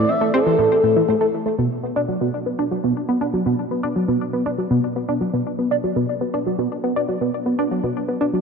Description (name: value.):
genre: ambient.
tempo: 120 BPM.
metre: 4/4.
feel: straight.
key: unclear.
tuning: A4 = 442 Hz.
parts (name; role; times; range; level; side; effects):
expressive synth lead; melody; 0.0-1.1 s; A4 to E5; -19 LUFS; left 2 dB; chorus, ping-pong delay.
tight sequenced synth; riff; 0.0-8.4 s; A2 to D4; -19 LUFS; equal; chorus, phaser, ping-pong delay.
room: wet lush hall reverb, RT60 2.6 s.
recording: cassette tape.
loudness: -18 LUFS.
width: side -5 dB against mid.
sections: 0.0-1.6 A section; 1.6-8.4 B section.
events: none.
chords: 0.0 A5; 1.6 Bm.